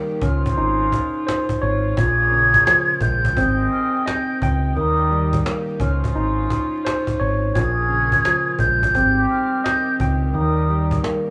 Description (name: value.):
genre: hip hop, boom-bap hip-hop.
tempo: 86 BPM.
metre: 4/4.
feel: swing 62% on 16ths.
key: unclear.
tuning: A4 = 440 Hz.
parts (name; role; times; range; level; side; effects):
tine electric piano; accompaniment; 0.0-11.3 s; Bb2 to G5; -26 LUFS; equal; high-pass filter, low-pass filter.
warm symphonic string section; sustained chords; 0.0-11.3 s; C3 to G5; -37 LUFS; equal; high-pass filter, low-pass filter.
cajon; drums; 0.1-11.3 s; none; -29 LUFS; equal; vintage 12-bit sampler grit.
mellow silver concert flute; melody; 0.2-11.0 s; Eb6 to Ab6; -22 LUFS; equal; high-pass filter, low-pass filter, slapback echo.
muted trumpet section; stabs; 0.2-11.0 s; G3 to Eb5; -29 LUFS; equal; high-pass filter, low-pass filter, slapback echo.
deep dub fingered electric bass; bass; 0.2-10.9 s; Ab1 to Eb2; -23 LUFS; equal; none.
room: light reverb, studio ambience.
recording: rough home demo mix, vinyl crackle, small room ambience.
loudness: -19 LUFS.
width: mono.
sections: 0.0-11.3 A section.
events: none.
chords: 0.2 Dbmaj9; 2.0 Bbm7; 3.4 Abmaj7; 4.8 Eb7; 5.8 Dbmaj9; 7.6 Bbm7; 8.9 Abmaj7; 10.3 Eb7.